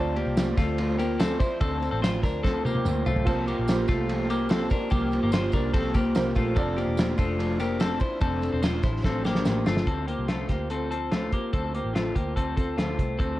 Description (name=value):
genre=jangly indie pop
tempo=145 BPM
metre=4/4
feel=straight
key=D minor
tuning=A4 = 440 Hz
part: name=electric guitar through a small old amp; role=accompaniment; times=0.0-13.4 s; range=C3 to C5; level=-32 LUFS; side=right 3 dB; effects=warbly pitch drift
part: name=warm upright piano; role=accompaniment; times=0.0-9.9 s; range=Bb3 to D5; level=-35 LUFS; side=right 4 dB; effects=none
part: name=twelve-string electric guitar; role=arpeggios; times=0.0-13.4 s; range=A3 to C5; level=-28 LUFS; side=left 3 dB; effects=none
part: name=vintage muted picked electric bass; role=bass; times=0.0-13.4 s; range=E1 to D2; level=-31 LUFS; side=equal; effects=none
part: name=cloth-damped thuddy drum kit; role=drums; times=0.2-13.3 s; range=crash cymbal, hi-hat, kick drum, ride cymbal, snare drum, toms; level=-27 LUFS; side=equal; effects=gated reverb
part: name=tambourine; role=percussion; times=0.4-9.8 s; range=none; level=-49 LUFS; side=right 5 dB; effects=none
room=moderate studio reverb, RT60 0.6 s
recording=cassette tape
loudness=-23 LUFS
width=side -16 dB against mid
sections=0.0-9.9 A section; 9.9-13.4 B section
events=drum fill 2.4-3.3, 9.1-9.9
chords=0.0 Dm7; 3.3 C7sus4; 6.6 F6; 9.9 Dm7